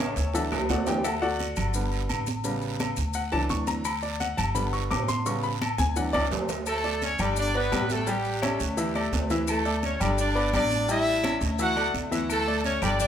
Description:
latin, salsa; 171 BPM; 4/4; straight; D major; A4 = 440 Hz
bright baby grand piano; accompaniment; 0.0-13.1 s; C#3 to D6; -29 LUFS; left 2 dB
upright bass; bass; 0.0-13.1 s; G1 to D2; -30 LUFS; equal
claves; percussion; 0.0-13.0 s; -41 LUFS; left 5 dB
maracas; percussion; 0.0-13.1 s; -40 LUFS; left 7 dB
congas; percussion; 0.2-13.1 s; -35 LUFS; equal
guiro; percussion; 0.2-13.1 s; -39 LUFS; right 9 dB
agogo bells and timbales; percussion; 0.3-13.0 s; -33 LUFS; right 1 dB
bright horn section; melody; 6.7-13.1 s; G3 to F#5; -27 LUFS; equal; tape echo
moderate large studio reverb, RT60 0.9 s; band playing live in one room; -24 LUFS; side -9 dB against mid
0.0-6.7 A section; 6.7-13.1 B section
drum fill 0.0-1.0, 5.8-6.7; grand piano solo 0.0-6.7
0.3 Dadd9; 1.8 G; 2.5 A7; 3.2 Dadd9; 4.6 G; 5.3 A7; 6.0 Dadd9; 6.7 D5; 7.4 G; 8.1 A7; 8.8 Dsus2; 10.2 G; 10.9 A7; 11.6 Dadd9
0.34 0.69 | 1.05 1.40 1.75 2.10 | 2.45 2.81 3.16 3.51 | 3.86 4.21 4.56 4.91 | 5.27 5.62 5.97 6.32 | 6.67 7.02 7.38 7.73 | 8.08 8.43 8.78 9.13 | 9.48 9.84 10.19 10.54 | 10.89 11.24 11.60 11.95 | 12.30 12.65 13.00

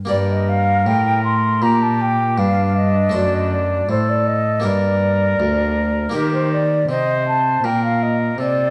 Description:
classical, baroque-style sonata movement with continuo; 80 BPM; 4/4; straight; G minor; A4 = 440 Hz
harpsichord; accompaniment; 0.0-8.7 s; D2 to D5; -28 LUFS; equal
warm oboe; melody; 0.1-8.7 s; D4 to C5; -28 LUFS; equal
mellow concert flute; second line; 0.1-8.7 s; Bb4 to C6; -22 LUFS; equal
rich cello; bass; 0.1-8.7 s; D2 to Eb3; -22 LUFS; equal
wet recital hall reverb, RT60 1.4 s; dark, warm production, faint mains hum; -18 LUFS; mono
0.1-8.7 A section
0.1 Gm; 3.1 D7/F#; 4.6 Gm; 6.1 Eb
| 0.10 0.86 1.62 2.38 | 3.14 3.89 4.64 5.39 | 6.14 6.89 7.64 8.39

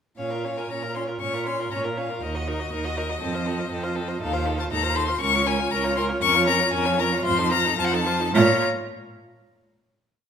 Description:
quick classical-period movement for string quartet; 107-122 BPM; 4/4; rubato; Bb minor; A4 = 440 Hz
rich violin; melody; 0.2-8.6 s; Eb5 to Db6; -25 LUFS; left 7 dB
clear violin; second line; 0.2-8.6 s; A4 to Eb5; -29 LUFS; left 1 dB
rich viola; accompaniment; 0.2-8.6 s; C4 to Gb4; -29 LUFS; right 2 dB
clear cello; bass; 0.2-8.6 s; Db2 to Bb2; -26 LUFS; right 4 dB
wet recital hall reverb, RT60 1.4 s; recorded in a church or concert hall; -21 LUFS; side -7 dB against mid
0.2-8.3 A section; 8.3-10.3 final chord
0.2 Bbm; 2.2 Ebm; 3.2 F; 4.2 F7/Eb; 5.2 Bbm/Db; 6.2 Bbm/F; 7.3 F7; 8.3 Bb5
| 0.19 0.70 1.21 1.72 | 2.23 2.73 3.22 3.72 | 4.22 4.71 5.21 5.72 | 6.22 6.73 7.25 7.79 | 8.34

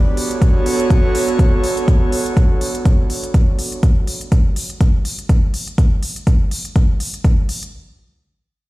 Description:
deep house; 123 BPM; 4/4; swing 56% on 16ths; B minor; A4 = 438 Hz
airy breathy pad; sustained chords; 0.0-3.8 s; B3 to C#5; -20 LUFS; right 2 dB; chorus, sidechain pumping
electronic hi-hat; drums; 0.2-7.7 s; -27 LUFS; left 1 dB; studio reverb
electronic kick drum; drums; 0.4-7.4 s; -13 LUFS; equal; studio reverb
little or no reverb; played on a big sound system in a bare room, stone room reverb; -14 LUFS; side -19 dB against mid
0.0-7.7 A section
0.0 Bm9; 3.8 N.C.
0.42 0.90 1.39 | 1.88 2.37 2.85 3.34 | 3.83 4.32 4.81 5.29 | 5.78 6.27 6.76 7.25

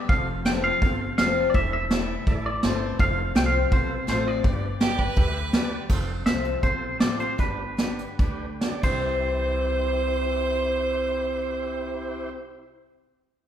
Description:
honky-tonk and classic country; 132-166 BPM; 4/4; straight; C major; A4 = 439 Hz
twangy electric guitar; melody; 0.0-12.3 s; B4 to G5; -28 LUFS; right 1 dB; harmonic tremolo
picked steel-string acoustic guitar; accompaniment; 0.0-12.4 s; E2 to G4; -30 LUFS; left 5 dB
tonewheel organ; accompaniment; 0.1-12.3 s; D4 to E5; -35 LUFS; right 2 dB; slow rotary speaker, overdrive
upright bass; bass; 0.1-12.3 s; E1 to D2; -30 LUFS; equal
soft brush drum kit; drums; 0.1-8.9 s; crash cymbal, hi-hat, kick drum, snare drum; -24 LUFS; equal
clear fiddle; second line; 4.8-5.8, 8.8-12.3 s; G4 to C5; -27 LUFS; right 2 dB
moderate recital hall reverb, RT60 1.4 s; recorded in a church or concert hall; -22 LUFS; side -10 dB against mid
0.0-5.9 A section; 5.9-9.1 B section; 9.1-12.7 C section
slowing down 5.9-9.1
0.1 F; 1.5 Am/E; 3.0 F; 4.4 G; 5.9 F; 7.4 G; 8.8 C
| 0.09 0.45 0.81 1.18 | 1.54 1.90 2.27 2.63 | 2.99 3.35 3.72 4.08 | 4.44 4.80 5.17 5.53 | 5.89 6.26 6.62 7.00 | 7.38 7.78 8.19 8.61 | 9.06 9.51 9.97 10.42 | 10.88 11.33 11.79 12.24

